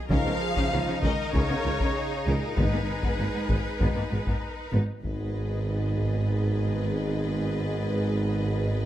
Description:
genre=cinematic, epic orchestral film score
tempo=97 BPM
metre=4/4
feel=straight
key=G# dorian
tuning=A4 = 439 Hz
part: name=bright symphonic viola section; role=accompaniment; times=0.0-8.9 s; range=E#4 to B4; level=-36 LUFS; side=equal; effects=none
part: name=warm symphonic violin section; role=melody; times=0.1-8.9 s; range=G#4 to E#5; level=-36 LUFS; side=left 4 dB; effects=none
part: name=clear symphonic violin section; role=second line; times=0.1-8.9 s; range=A#3 to B4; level=-36 LUFS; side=left 3 dB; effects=none
part: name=mellow French horn section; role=sustained chords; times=0.1-8.9 s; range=G#3 to D#4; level=-37 LUFS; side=left 5 dB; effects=none
part: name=warm trombone section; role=sustained chords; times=0.1-4.4 s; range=G#2 to E#3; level=-35 LUFS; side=right 4 dB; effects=none
part: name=rich studio cello section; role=bass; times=0.1-8.9 s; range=G#2 to C#3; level=-32 LUFS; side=right 1 dB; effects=none
part: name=rich symphonic double bass section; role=bass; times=0.1-8.9 s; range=G#1 to C#2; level=-30 LUFS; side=right 1 dB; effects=none
part: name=warm tuba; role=bass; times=0.1-8.9 s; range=G#1 to C#2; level=-33 LUFS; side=right 3 dB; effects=none
part: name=solo taiko drums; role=drums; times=0.1-6.3 s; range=none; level=-30 LUFS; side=left 1 dB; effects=none
part: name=timpani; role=percussion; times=2.6-5.9 s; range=G#2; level=-34 LUFS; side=left 1 dB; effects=none
room=light reverb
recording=close, detailed microphones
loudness=-24 LUFS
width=side -12 dB against mid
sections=0.0-5.0 A section; 5.0-8.9 B section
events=none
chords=0.1 C#add9; 2.6 G#m

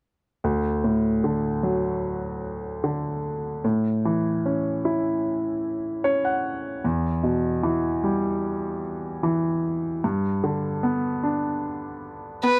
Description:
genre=pop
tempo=75 BPM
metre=4/4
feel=straight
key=D major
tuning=A4 = 440 Hz
part: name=clear concert grand piano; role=accompaniment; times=0.4-12.6 s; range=D2 to F#5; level=-26 LUFS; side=equal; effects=none
part: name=rich violin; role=melody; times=12.5-12.6 s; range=B4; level=-20 LUFS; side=equal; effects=none
room=small room ambience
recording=dry, close 1970s-style studio recording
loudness=-25 LUFS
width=mono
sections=0.4-12.6 A section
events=grand piano fill 5.6-6.8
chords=0.4 D; 3.6 A; 6.8 Em; 10.0 G

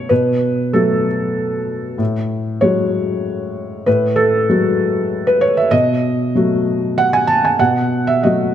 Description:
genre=neoclassical minimalist piano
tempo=96 BPM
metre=3/4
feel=rubato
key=unclear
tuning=A4 = 440 Hz
part: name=felt-muted upright piano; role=solo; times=0.0-8.5 s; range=A2 to A5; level=-14 LUFS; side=equal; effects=none
room=moderate concert hall reverb, RT60 1.9 s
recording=none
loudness=-14 LUFS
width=side -10 dB against mid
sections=0.0-8.5 A section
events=none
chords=0.0 B7(no3); 2.0 F#madd9/A; 5.7 B7

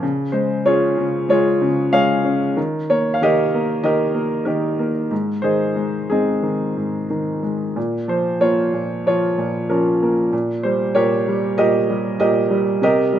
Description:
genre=classical, lyrical solo piano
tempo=94 BPM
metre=4/4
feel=rubato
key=unclear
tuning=A4 = 440 Hz
part: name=clear baby grand piano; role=solo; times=0.0-13.2 s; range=Ab2 to F5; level=-16 LUFS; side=equal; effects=none
room=light reverb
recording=close, detailed microphones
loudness=-17 LUFS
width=side -10 dB against mid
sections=0.0-13.2 A section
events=none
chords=0.0 Db; 2.6 Eb; 5.1 Ab; 7.8 Bbm; 10.3 Eb/Bb

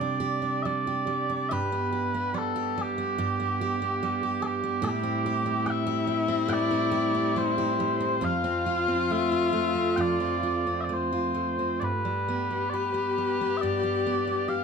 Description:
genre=celtic folk, Celtic slow air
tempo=64-74 BPM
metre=4/4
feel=rubato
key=G mixolydian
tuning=A4 = 440 Hz
part: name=mellow small bagpipes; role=melody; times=0.0-14.6 s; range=G4 to G5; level=-28 LUFS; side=equal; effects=none
part: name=picked steel-string acoustic guitar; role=accompaniment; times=0.0-14.6 s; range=F2 to G4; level=-29 LUFS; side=right 4 dB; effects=none
part: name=rich viola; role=second line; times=4.8-14.6 s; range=E4 to G4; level=-29 LUFS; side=left 7 dB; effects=none
room=light reverb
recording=close, detailed microphones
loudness=-25 LUFS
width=side -6 dB against mid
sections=0.0-11.8 A section; 11.8-14.6 B section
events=none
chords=0.0 Csus2; 1.5 G; 4.8 Am7; 8.2 F; 11.8 G

